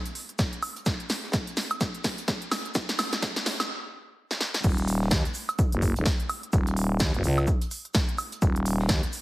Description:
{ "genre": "bass house", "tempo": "127 BPM", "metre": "4/4", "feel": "swing 59% on 16ths", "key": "Eb minor", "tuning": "A4 = 438 Hz", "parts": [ { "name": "big-room dance drum kit", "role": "drums", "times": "0.1-9.2 s", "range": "crash cymbal, hi-hat, snare drum, woodblock", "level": "-29 LUFS", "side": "equal", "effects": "none" }, { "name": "crisp fusion drum kit", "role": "drums", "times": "0.1-9.2 s", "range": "hi-hat, shaker, snare drum", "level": "-42 LUFS", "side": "right 1 dB", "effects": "none" }, { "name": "electronic kick drum", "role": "drums", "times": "0.4-9.0 s", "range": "none", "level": "-26 LUFS", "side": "equal", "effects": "none" }, { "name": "growling FM bass", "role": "bass", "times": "4.6-9.0 s", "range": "Eb1 to Eb2", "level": "-25 LUFS", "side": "equal", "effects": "overdrive, sidechain pumping" } ], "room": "light reverb", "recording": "heavily compressed radio sound, high-pass filter", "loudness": "-24 LUFS", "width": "side -19 dB against mid", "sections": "0.0-4.6 A section; 4.6-9.2 B section", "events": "build-up 0.0-4.6; drum fill 0.0-3.7, 4.3-4.6; filter sweep 0.0-4.6; stop 3.7-4.6; drop 4.6-9.2", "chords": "none" }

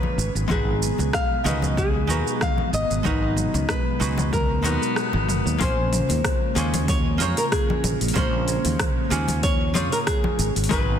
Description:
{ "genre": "sunset chillout", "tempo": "94 BPM", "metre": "4/4", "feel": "swing 54% on 16ths", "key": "Bb phrygian", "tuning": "A4 = 441 Hz", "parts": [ { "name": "nylon-string guitar", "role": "melody", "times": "0.0-11.0 s", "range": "Eb4 to F5", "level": "-27 LUFS", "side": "left 1 dB", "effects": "ping-pong delay" }, { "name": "archtop guitar, miked and amplified", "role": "accompaniment", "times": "0.0-11.0 s", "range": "Ab3 to Db5", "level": "-29 LUFS", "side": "moving between left 6 dB and right 5 dB", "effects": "auto-pan, ping-pong delay" }, { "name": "airy breathy pad", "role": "sustained chords", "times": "0.0-11.0 s", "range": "Bb2 to Db4", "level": "-30 LUFS", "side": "equal", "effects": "chorus" }, { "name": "congas", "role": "percussion", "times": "0.0-10.8 s", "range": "none", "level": "-32 LUFS", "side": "left 4 dB", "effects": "none" }, { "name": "fretless electric bass", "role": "bass", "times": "0.2-11.0 s", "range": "Gb1 to F2", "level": "-24 LUFS", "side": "equal", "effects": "none" }, { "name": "deep house drum kit", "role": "drums", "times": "0.2-10.9 s", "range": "hi-hat, rim click, shaker, toms", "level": "-29 LUFS", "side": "right 1 dB", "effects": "overdrive" }, { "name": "electronic kick drum", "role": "drums", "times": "0.5-10.8 s", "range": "none", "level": "-26 LUFS", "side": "equal", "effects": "overdrive" } ], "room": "moderate concert hall reverb, RT60 2.1 s", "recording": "dense, heavily limited modern master", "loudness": "-20 LUFS", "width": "side -9 dB against mid", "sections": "0.0-5.6 A section; 5.6-11.0 B section", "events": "kick drops out 5.0-5.6; band accent 5.0-5.3", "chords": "0.2 Abm9; 5.6 Bbm9; 10.4 Abm7" }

